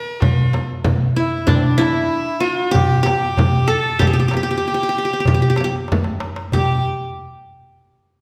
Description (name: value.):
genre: Arabic maqam ensemble.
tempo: 95 BPM.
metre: 4/4.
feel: straight.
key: G maqam rast.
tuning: A4 = 439 Hz.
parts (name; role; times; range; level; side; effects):
qanun; melody; 0.0-6.8 s; D4 to Bb4+50c; -23 LUFS; equal; none.
rich violin; second line; 0.0-6.8 s; C4 to Bb4+47c; -26 LUFS; equal; none.
darbuka; percussion; 0.2-6.8 s; none; -22 LUFS; equal; none.
frame drum; percussion; 0.2-6.8 s; none; -23 LUFS; equal; none.
room: wet recital hall reverb, RT60 1.4 s.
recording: recorded in a church or concert hall.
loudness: -18 LUFS.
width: mono.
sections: 0.0-6.5 A section; 6.5-8.2 B section.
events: drum fill 5.9-6.5.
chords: none.